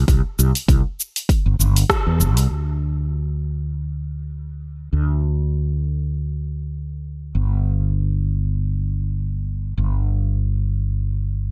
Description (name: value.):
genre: organic downtempo.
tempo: 99 BPM.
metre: 4/4.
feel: swing 56% on 16ths.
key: unclear.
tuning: A4 = 440 Hz.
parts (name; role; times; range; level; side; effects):
mellow fretless electric bass; bass; 0.0-11.5 s; G1 to E2; -22 LUFS; equal; analog chorus, sidechain pumping.
deep house drum kit; drums; 0.1-2.5 s; hi-hat, rim click, shaker; -25 LUFS; equal; none.
electronic kick drum; drums; 0.1-2.0 s; none; -20 LUFS; equal; none.
room: little or no reverb.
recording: none.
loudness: -21 LUFS.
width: mono.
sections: 0.0-2.5 A section; 2.5-11.5 B section.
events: band accent 1.9-2.2.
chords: none.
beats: | 0.08 0.68 1.29 1.89 | 2.50 3.11 3.71 4.32 | 4.92 5.53 6.14 6.74 | 7.35 7.96 8.56 9.17 | 9.77 10.38 10.98.